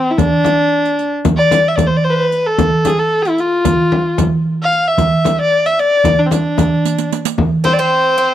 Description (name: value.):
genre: Turkish makam ensemble.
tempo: 225 BPM (eighths).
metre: 9/8.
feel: straight.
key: D makam nikriz.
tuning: A4 = 437 Hz.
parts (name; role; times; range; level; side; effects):
warm kamancheh; melody; 0.0-8.3 s; C4 to F5+22c; -14 LUFS; left 1 dB; none.
darbuka; percussion; 0.2-8.3 s; none; -18 LUFS; right 3 dB; none.
frame drum; percussion; 0.2-7.8 s; none; -18 LUFS; left 4 dB; none.
riq; percussion; 0.2-7.4 s; none; -24 LUFS; right 14 dB; none.
Greek bouzouki; second line; 7.6-8.3 s; C4; -18 LUFS; right 6 dB; slapback echo.
room: studio reverb.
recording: dry, close 1970s-style studio recording.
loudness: -12 LUFS.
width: side -11 dB against mid.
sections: 0.0-7.4 A section.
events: drum fill 6.9-7.4.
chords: none.